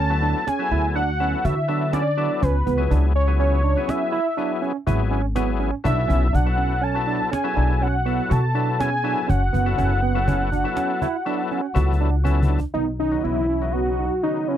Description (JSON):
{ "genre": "progressive instrumental, band music in an uneven meter", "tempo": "122 BPM", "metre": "7/4", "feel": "straight", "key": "unclear", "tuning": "A4 = 442 Hz", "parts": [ { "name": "wide unison lead", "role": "melody", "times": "0.0-14.6 s", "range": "C#4 to A5", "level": "-24 LUFS", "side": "equal", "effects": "none" }, { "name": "barky tine electric piano", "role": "arpeggios", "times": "0.0-14.6 s", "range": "B3 to F#4", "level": "-27 LUFS", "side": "right 10 dB", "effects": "none" }, { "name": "upright bass", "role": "bass", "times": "0.0-14.1 s", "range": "F#1 to D3", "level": "-22 LUFS", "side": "equal", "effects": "none" }, { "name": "overdriven tonewheel organ", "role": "accompaniment", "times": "0.1-14.6 s", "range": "C#3 to A4", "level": "-28 LUFS", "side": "left 9 dB", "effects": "chorus vibrato" }, { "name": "cajon", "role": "drums", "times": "0.2-12.7 s", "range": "none", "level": "-26 LUFS", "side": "left 1 dB", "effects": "none" } ], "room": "little or no reverb", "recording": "dry, close 1970s-style studio recording", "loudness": "-19 LUFS", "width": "side -10 dB against mid", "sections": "0.0-12.8 A section; 12.8-14.6 B section", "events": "drum fill 11.8-12.8", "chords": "0.0 Dmaj7; 2.4 C#m7; 5.9 Bm7; 9.3 F#m; 12.8 B" }